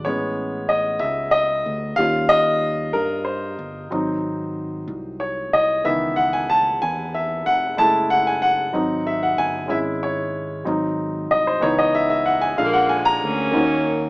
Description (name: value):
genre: slow gospel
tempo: 62 BPM (dotted quarters)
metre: 6/8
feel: straight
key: unclear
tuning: A4 = 438 Hz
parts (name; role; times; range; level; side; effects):
- warm baby grand piano; accompaniment; 0.0-14.1 s; D3 to A#5; -19 LUFS; equal; none
- fingered electric bass; bass; 0.0-14.1 s; E#1 to G2; -30 LUFS; equal; none
- clear saxophone section; melody; 12.6-14.1 s; D3 to C#4; -22 LUFS; equal; none
room: wet small room reverb, RT60 0.5 s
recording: band playing live in one room, small speaker sound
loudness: -18 LUFS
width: side -24 dB against mid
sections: 0.0-13.6 A section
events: grand piano solo 0.0-13.6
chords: 0.1 Amaj7; 2.0 D#7; 3.9 G#7; 5.9 C#m7; 7.8 F#m7; 8.7 G#7; 9.7 C#m/G#; 10.7 G#7; 11.6 C#m7; 12.6 A#7; 13.6 Ebm7